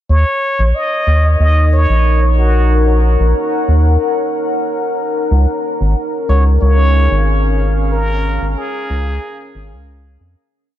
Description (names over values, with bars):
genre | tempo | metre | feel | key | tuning
ambient dub | 92 BPM | 4/4 | straight | Eb minor | A4 = 439 Hz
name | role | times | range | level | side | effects
trumpet with plunger mute | melody | 0.1-10.2 s | Gb4 to Eb5 | -19 LUFS | equal | dub echo
deep dark ambient pad | sustained chords | 1.4-10.5 s | Db4 to Gb5 | -19 LUFS | left 2 dB | chorus, built-in reverb
round analog bass | bass | 0.1-10.4 s | Ab1 to F2 | -11 LUFS | equal | none
room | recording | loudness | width
light reverb, studio reverb | dark, warm production | -12 LUFS | side -12 dB against mid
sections
0.1-10.5 groove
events
fade-out 7.1-10.5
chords
0.1 Ebm7; 5.3 Db6